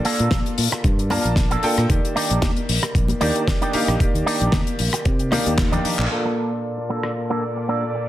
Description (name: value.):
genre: nu-disco, nu disco.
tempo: 114 BPM.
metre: 4/4.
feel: swing 54% on 16ths.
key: Bb major.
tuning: A4 = 441 Hz.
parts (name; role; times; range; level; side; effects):
clear baby grand piano; accompaniment; 0.0-8.1 s; Eb3 to A5; -25 LUFS; equal; sidechain pumping, low-pass filter, tape echo.
electric guitar with an envelope filter; riff; 0.0-8.0 s; Bb3 to Bb4; -26 LUFS; right 2 dB; analog chorus, low-pass filter.
damped 70s drum kit; drums; 0.0-7.1 s; handclaps, hi-hat, rim click, snare drum; -25 LUFS; left 2 dB; low-pass filter on hats, low-pass filter on snare, low-pass filter on room.
fingered electric bass; bass; 0.2-6.1 s; Bb1 to C3; -22 LUFS; equal; none.
electronic kick drum; drums; 0.3-5.7 s; none; -21 LUFS; equal; overdrive.
congas; percussion; 0.3-5.8 s; none; -28 LUFS; left 4 dB; none.
clear studio string section; sustained chords; 6.1-8.1 s; Bb2 to D5; -26 LUFS; equal; sidechain pumping, low-pass filter.
room: moderate plate reverb, RT60 1.2 s, small room ambience.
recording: dense, heavily limited modern master.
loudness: -18 LUFS.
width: side -13 dB against mid.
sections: 0.0-6.1 A section; 6.1-8.1 B section.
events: drum fill 5.6-6.1; band accent 6.0; filter sweep on clean electric guitar 6.1-8.1; filter sweep on string section 6.1-8.1.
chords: 0.0 Bbmaj7; 1.9 Ebmaj7; 6.1 Bbmaj7.